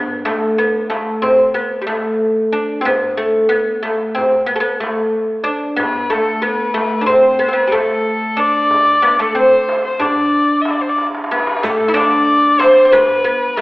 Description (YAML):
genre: Turkish makam ensemble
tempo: 185 BPM (eighths)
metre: 9/8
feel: straight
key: unclear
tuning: A4 = 440 Hz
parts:
  - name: oud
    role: melody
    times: 0.0-13.6 s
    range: G3 to E4-30c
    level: -14 LUFS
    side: equal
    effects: none
  - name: darbuka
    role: percussion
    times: 0.3-13.6 s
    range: none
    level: -27 LUFS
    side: equal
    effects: none
  - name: clear kamancheh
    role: second line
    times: 5.8-13.6 s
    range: G4 to E5-28c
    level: -16 LUFS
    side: left 1 dB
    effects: none
  - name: riq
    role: percussion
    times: 11.6-13.6 s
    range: none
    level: -30 LUFS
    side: right 2 dB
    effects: none
room: moderate scoring stage reverb, RT60 1.8 s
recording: recorded in a church or concert hall, telephone sound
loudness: -13 LUFS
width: side -21 dB against mid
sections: 0.0-11.6 A section; 11.6-13.6 B section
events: drum fill 11.0-11.6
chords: none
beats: 0.25 0.58 0.91 1.23 1.56 1.88 2.21 2.54 | 2.86 3.19 3.51 3.84 4.16 4.49 4.82 5.14 5.46 | 5.79 6.12 6.44 6.77 7.09 7.42 7.74 8.07 8.39 | 8.71 9.04 9.37 9.69 10.01 10.34 10.66 10.99 11.31 | 11.63 11.96 12.28 12.61 12.93 13.26 13.58